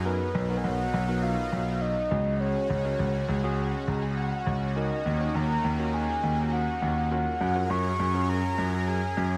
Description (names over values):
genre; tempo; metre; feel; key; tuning
pop; 102 BPM; 4/4; straight; F# major; A4 = 435 Hz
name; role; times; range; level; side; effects
supersaw pad; sustained chords; 0.0-9.4 s; D#3 to A#4; -38 LUFS; equal; analog chorus
warm concert grand piano; bass; 0.0-9.4 s; B1 to F#2; -30 LUFS; equal; none
soft octave-layered synth lead; melody; 0.1-9.4 s; B4 to C#6; -33 LUFS; equal; chorus, phaser, analog delay
bright tine electric piano; accompaniment; 0.1-8.7 s; G#3 to A#5; -38 LUFS; equal; subtle chorus
room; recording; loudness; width
moderate lush hall reverb, RT60 1.9 s; dreamy mix soaked in reverb; -28 LUFS; mono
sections
0.0-9.4 A section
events
tine electric piano fill 3.6-4.8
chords
0.1 Bmaj7; 2.1 C#sus4; 4.8 D#m7; 7.1 F#maj7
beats
| 0.05 0.64 1.23 1.82 | 2.41 2.99 3.58 4.17 | 4.76 5.35 5.94 6.52 | 7.11 7.70 8.29 8.88